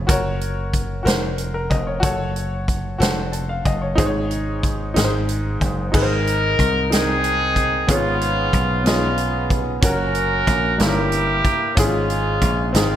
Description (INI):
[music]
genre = slow gospel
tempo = 62 BPM (dotted quarters)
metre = 6/8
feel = straight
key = Db major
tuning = A4 = 440 Hz
[part]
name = bright baby grand piano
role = accompaniment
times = 0.0-13.0 s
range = G2 to A5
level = -24 LUFS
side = left 1 dB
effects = none
[part]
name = dry thumbed slap bass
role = bass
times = 0.0-13.0 s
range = F1 to C2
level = -23 LUFS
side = equal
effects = none
[part]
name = swinging big-band drum kit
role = drums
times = 0.1-12.9 s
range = crash cymbal, hi-hat, kick drum, snare drum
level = -22 LUFS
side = equal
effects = none
[part]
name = warm horn section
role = melody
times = 6.0-13.0 s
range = Ab3 to Bb4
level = -20 LUFS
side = equal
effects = none
[sound]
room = light reverb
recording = none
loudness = -17 LUFS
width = side -11 dB against mid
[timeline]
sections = 0.0-5.9 A section; 5.9-13.0 B section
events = none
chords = 0.1 Gb; 2.0 Gbm; 4.0 Absus4; 5.0 Ab; 7.9 Db7/Ab; 9.8 Gb; 10.8 Gdim7; 11.8 Db/Ab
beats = | 0.09 1.06 | 2.04 3.01 | 3.99 4.96 | 5.93 6.91 | 7.88 8.86 | 9.83 10.80 | 11.77 12.75